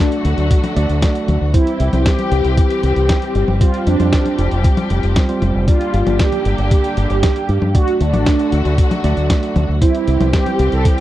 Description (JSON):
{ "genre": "italo disco", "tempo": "116 BPM", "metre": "4/4", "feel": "straight", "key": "unclear", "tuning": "A4 = 440 Hz", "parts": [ { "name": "mellow synth brass", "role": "melody", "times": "0.0-11.0 s", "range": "D4 to A4", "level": "-20 LUFS", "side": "right 1 dB", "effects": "chorus, tape echo" }, { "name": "warm studio string section", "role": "sustained chords", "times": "0.0-11.0 s", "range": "D3 to G4", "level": "-24 LUFS", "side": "left 3 dB", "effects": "none" }, { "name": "mellow tine electric piano", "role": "stabs", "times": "0.0-11.0 s", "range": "G3 to D5", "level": "-23 LUFS", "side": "right 4 dB", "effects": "none" }, { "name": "dusty soul sampler-style drum kit", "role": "drums", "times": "0.1-11.0 s", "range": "hi-hat, snare drum, toms", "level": "-22 LUFS", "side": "left 2 dB", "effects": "none" }, { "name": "fingered electric bass with an envelope filter", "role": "bass", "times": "0.2-10.8 s", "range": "F1 to G2", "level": "-17 LUFS", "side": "equal", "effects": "none" }, { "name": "electronic kick drum", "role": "drums", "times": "0.5-11.0 s", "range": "none", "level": "-14 LUFS", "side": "equal", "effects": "none" } ], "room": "little or no reverb", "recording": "dry, close 1970s-style studio recording", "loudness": "-13 LUFS", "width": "side -14 dB against mid", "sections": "0.0-11.0 A section", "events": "none", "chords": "0.0 D; 1.5 C; 3.6 Fsus2; 5.7 Gm; 7.7 D; 9.8 C" }